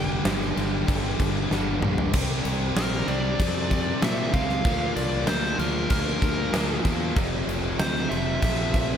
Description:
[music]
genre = hard rock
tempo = 96 BPM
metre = 4/4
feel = straight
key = unclear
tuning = A4 = 440 Hz
[part]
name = nasal lead guitar with a parked wah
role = melody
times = 0.0-9.0 s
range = Bb4 to G5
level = -31 LUFS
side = equal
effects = overdrive, slapback echo
[part]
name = distorted electric guitar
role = riff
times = 0.0-9.0 s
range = F2 to C4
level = -31 LUFS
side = right 9 dB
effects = overdrive
[part]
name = high-gain distorted guitar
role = riff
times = 0.0-9.0 s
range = F2 to G4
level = -34 LUFS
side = left 1 dB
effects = distortion, slapback echo
[part]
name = overdriven semi-hollow guitar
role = riff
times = 0.0-9.0 s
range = F2 to C4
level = -31 LUFS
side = left 8 dB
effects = none
[part]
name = growling fingered electric bass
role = bass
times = 0.0-8.9 s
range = F1 to Bb2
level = -29 LUFS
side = equal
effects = overdrive
[part]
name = huge arena drum kit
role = drums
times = 0.3-8.9 s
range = crash cymbal, kick drum, snare drum, toms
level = -26 LUFS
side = equal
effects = none
[sound]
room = moderate scoring stage reverb, RT60 1.8 s, studio reverb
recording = big arena sound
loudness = -22 LUFS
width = side -8 dB against mid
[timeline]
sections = 0.0-2.1 A section; 2.1-9.0 A section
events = drum fill 1.5-2.1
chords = 0.0 Gm; 2.1 C; 4.6 Bb; 7.2 F

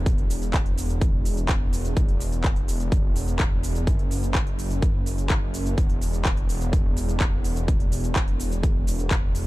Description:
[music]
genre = EDM, festival progressive house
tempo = 126 BPM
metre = 4/4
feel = straight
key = unclear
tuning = A4 = 440 Hz
[part]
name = wide detuned saw bass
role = bass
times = 0.0-9.5 s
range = E1 to F#1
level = -26 LUFS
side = equal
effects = chorus, sidechain pumping
[part]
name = big-room dance drum kit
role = drums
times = 0.1-9.4 s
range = handclaps, hi-hat, shaker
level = -32 LUFS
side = equal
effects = none
[part]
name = electronic kick drum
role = drums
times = 0.1-9.2 s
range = none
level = -22 LUFS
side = equal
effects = none
[sound]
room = digital ambience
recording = dark, warm production, lossy compression artefacts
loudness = -21 LUFS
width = side -18 dB against mid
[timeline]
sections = 0.0-9.5 A section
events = none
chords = none

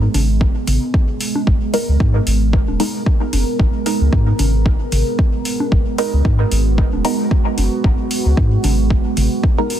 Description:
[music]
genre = dub techno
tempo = 113 BPM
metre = 4/4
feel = swing 56% on 16ths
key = G# minor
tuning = A4 = 444 Hz
[part]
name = deep dark ambient pad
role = sustained chords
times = 0.0-9.8 s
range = G#3 to A#4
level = -22 LUFS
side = right 3 dB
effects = chorus, built-in reverb, sidechain pumping
[part]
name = filtered dub chord stab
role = stabs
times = 0.0-9.8 s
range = G#3 to A#4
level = -23 LUFS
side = right 1 dB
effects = chorus, phaser, sidechain pumping, dub echo
[part]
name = warm sub bass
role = bass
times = 0.0-9.3 s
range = D#1 to G#2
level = -16 LUFS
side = equal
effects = sidechain pumping
[part]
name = electronic hi-hat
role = drums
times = 0.1-9.8 s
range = none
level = -26 LUFS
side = left 1 dB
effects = overdrive
[part]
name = electronic toms and bongos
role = percussion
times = 0.1-9.3 s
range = none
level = -26 LUFS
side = left 1 dB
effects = overdrive, sidechain pumping on perc, sidechain pumping on toms, dub echo
[part]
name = electronic kick drum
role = drums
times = 0.4-9.6 s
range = none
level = -16 LUFS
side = equal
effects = overdrive
[sound]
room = digital ambience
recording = dense, heavily limited modern master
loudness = -14 LUFS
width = side -11 dB against mid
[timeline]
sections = 0.0-9.8 A section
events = filter sweep on synth stab 0.0-9.8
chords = 0.0 G#madd9

